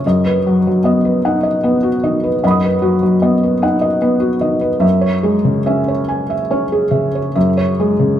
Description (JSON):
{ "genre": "neoclassical minimalist piano", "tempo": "49 BPM (dotted quarters)", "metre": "6/8", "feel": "uneven beats, rubato", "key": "unclear", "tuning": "A4 = 440 Hz", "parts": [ { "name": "felt-muted upright piano", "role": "solo", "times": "0.0-8.2 s", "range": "F#2 to D#6", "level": "-13 LUFS", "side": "equal", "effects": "none" } ], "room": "wet stone room reverb, RT60 1.4 s", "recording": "band playing live in one room", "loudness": "-13 LUFS", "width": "side -10 dB against mid", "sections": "0.0-8.2 A section", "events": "none", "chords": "0.0 B/F#; 4.8 C#m/F#" }